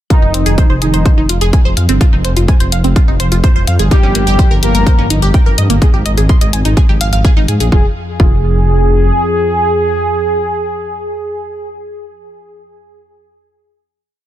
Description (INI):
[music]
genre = melodic techno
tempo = 126 BPM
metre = 4/4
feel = straight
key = F minor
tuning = A4 = 441 Hz
[part]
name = analog synth brass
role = melody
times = 0.1-11.7 s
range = Eb3 to Bb4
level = -17 LUFS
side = equal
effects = chorus, sidechain pumping, ping-pong delay
[part]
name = wide unison pluck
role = arpeggios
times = 0.1-8.3 s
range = Bb3 to C6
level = -19 LUFS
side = right 1 dB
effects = sidechain pumping, dub echo
[part]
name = analog drone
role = drone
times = 1.8-11.2 s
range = F2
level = -23 LUFS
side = equal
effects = none
[part]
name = electronic hi-hat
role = drums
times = 0.1-7.7 s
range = none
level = -20 LUFS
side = left 5 dB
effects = none
[part]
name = electronic kick drum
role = drums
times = 0.1-8.3 s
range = none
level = -9 LUFS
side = equal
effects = none
[part]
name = dark detuned saw bass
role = bass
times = 0.2-9.1 s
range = F1 to Ab2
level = -13 LUFS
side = equal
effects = tube saturation, sidechain pumping
[sound]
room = digital ambience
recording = dense, heavily limited modern master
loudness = -9 LUFS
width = side -13 dB against mid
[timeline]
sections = 0.1-7.7 drop; 7.7-11.5 final chord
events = drop 0.1-7.7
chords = 0.1 Fm7; 3.9 Eb/G (rootless); 5.8 Ab5; 7.7 Fm